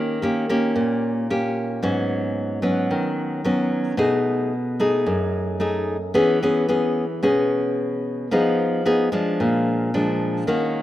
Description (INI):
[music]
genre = bossa nova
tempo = 111 BPM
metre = 4/4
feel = straight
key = Eb minor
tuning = A4 = 440 Hz
[part]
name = nylon-string guitar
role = solo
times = 0.0-10.8 s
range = F#2 to G#4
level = -19 LUFS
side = equal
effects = none
[sound]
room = moderate plate reverb, RT60 3.7 s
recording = rough home demo mix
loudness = -19 LUFS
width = side -14 dB against mid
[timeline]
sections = 0.0-10.5 A section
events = none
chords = 0.0 Eb7; 1.8 Abm7; 4.0 B6; 6.2 E6; 8.3 Fm7b5; 9.4 Bb7